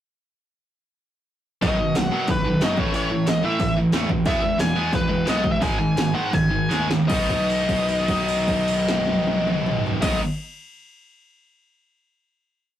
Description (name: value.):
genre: punk rock.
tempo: 151-182 BPM.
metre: 4/4.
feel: straight.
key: B mixolydian.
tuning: A4 = 444 Hz.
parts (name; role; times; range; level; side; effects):
bluesy overdriven lead guitar; melody; 1.6-10.2 s; B4 to G#5; -24 LUFS; left 2 dB; distortion.
tight distorted guitar; riff; 1.6-10.2 s; G#2 to D#4; -23 LUFS; right 1 dB; distortion.
fuzz picked electric bass; bass; 1.6-10.2 s; E1 to B2; -28 LUFS; equal; overdrive.
80s electronic pad drums; drums; 1.6-10.1 s; crash cymbal, hi-hat, kick drum, snare drum, toms; -25 LUFS; equal; gated reverb on snare and toms.
room: light reverb.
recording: rough rehearsal-room recording, warm saturation.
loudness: -19 LUFS.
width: side -11 dB against mid.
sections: 1.6-7.1 verse; 7.1-10.3 final chord.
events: slowing down 4.3-7.1; drum fill 6.7-7.1; held note 7.1-10.0.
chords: 1.6 B; 2.8 A; 4.3 E; 5.6 G#5; 7.1 B.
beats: | 1.62 1.95 2.28 2.61 | 2.94 3.27 3.60 3.93 | 4.26 4.59 4.92 5.26 | 5.61 5.96 6.33 6.70 | 7.09 7.48 7.88 8.27 | 8.67 9.07 9.46 9.86.